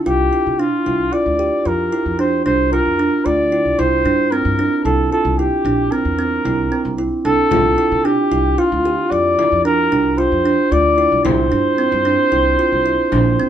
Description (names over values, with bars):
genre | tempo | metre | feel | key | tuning
contemporary instrumental, chamber music in an uneven meter | 112 BPM | 7/4 | straight | unclear | A4 = 439 Hz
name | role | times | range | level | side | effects
warm flugelhorn | melody | 0.1-13.5 s | F4 to D5 | -17 LUFS | equal | none
kalimba | arpeggios | 0.1-13.5 s | C4 to G4 | -17 LUFS | right 2 dB | none
upright bass | bass | 0.1-13.3 s | Bb1 to C3 | -23 LUFS | equal | none
frame drum | percussion | 7.5-13.4 s | none | -26 LUFS | left 6 dB | none
room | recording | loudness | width
light reverb | minimal, uncompressed stereo recording | -14 LUFS | side -10 dB against mid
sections
0.1-13.5 A section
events
none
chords
0.1 Bb/C; 3.8 C7; 7.5 Bb/C (rootless); 11.3 C